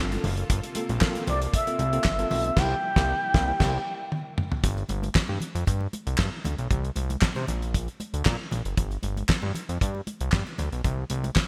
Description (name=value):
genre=early-eighties boogie funk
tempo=116 BPM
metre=4/4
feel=straight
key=unclear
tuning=A4 = 440 Hz
part: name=tine electric piano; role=accompaniment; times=0.0-3.8 s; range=Bb3 to A4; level=-36 LUFS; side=equal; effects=none
part: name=lush unison pad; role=sustained chords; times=0.0-4.6 s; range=C3 to A4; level=-42 LUFS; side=equal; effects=chorus
part: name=fat analog bass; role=bass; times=0.0-11.4 s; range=F#1 to C3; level=-31 LUFS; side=equal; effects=none
part: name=damped 70s drum kit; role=drums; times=0.1-11.5 s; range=crash cymbal, handclaps, hi-hat, kick drum, snare drum, toms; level=-28 LUFS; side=equal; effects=gated reverb
part: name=congas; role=percussion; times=0.1-11.5 s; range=none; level=-39 LUFS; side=equal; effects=none
part: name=expressive portamento lead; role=melody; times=1.3-4.1 s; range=D5 to G5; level=-30 LUFS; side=equal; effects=chorus
room=light reverb, studio reverb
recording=bright 1980s-style digital production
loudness=-27 LUFS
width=mono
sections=0.0-4.6 A section; 4.6-11.5 B section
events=band accent 2.6-4.6; drum fill 4.1-4.6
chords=0.5 Gm11; 2.6 C7; 4.6 N.C.; 7.5 Bb; 8.8 N.C.